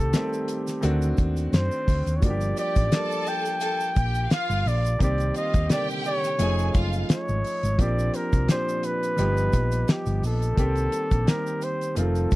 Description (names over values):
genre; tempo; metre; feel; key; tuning
lush 1970s-style soul; 86 BPM; 4/4; swing 54% on 16ths; unclear; A4 = 441 Hz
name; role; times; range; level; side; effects
breathy flugelhorn; melody; 0.0-12.4 s; G4 to G5; -28 LUFS; equal; none
warm grand piano; accompaniment; 0.0-12.4 s; Bb2 to Bb4; -30 LUFS; equal; none
hollow-body short-scale fingered electric bass; bass; 0.0-12.4 s; F1 to F#2; -25 LUFS; equal; none
damped 70s drum kit; drums; 0.1-12.4 s; hi-hat, kick drum, snare drum; -22 LUFS; equal; none
egg shaker; percussion; 0.1-12.4 s; none; -45 LUFS; right 10 dB; none
rich studio violin section; second line; 2.6-7.0 s; F4 to A5; -32 LUFS; equal; none
room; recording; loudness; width
little or no reverb; dry, close 1970s-style studio recording; -22 LUFS; side -18 dB against mid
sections
0.0-12.4 A section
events
none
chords
0.0 Am7b5; 0.8 D7b9; 2.2 Gm7; 5.0 Cm7; 6.4 F7alt; 7.8 Bb69; 9.2 G7alt; 10.6 Cm7